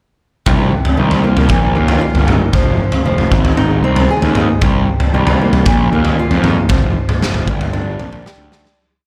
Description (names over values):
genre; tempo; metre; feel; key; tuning
quiet-loud alternative rock; 115 BPM; 4/4; straight; C minor; A4 = 440 Hz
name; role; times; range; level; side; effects
fingerpicked acoustic archtop guitar; arpeggios; 0.5-8.8 s; G2 to Ab4; -22 LUFS; equal; none
fuzz picked electric bass; bass; 0.5-8.6 s; F1 to F2; -18 LUFS; equal; overdrive
raw garage drum kit; drums; 0.5-8.8 s; kick drum, snare drum, toms; -16 LUFS; equal; none
room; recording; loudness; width
studio reverb; none; -14 LUFS; mono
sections
0.5-8.8 verse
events
fade-out 6.7-8.8; drum fill 8.3-8.8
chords
0.5 Cm7; 1.5 Bbsus4; 2.5 N.C.; 3.3 Ab; 4.6 C5; 5.7 Bbsus4; 6.7 N.C.; 7.5 Gm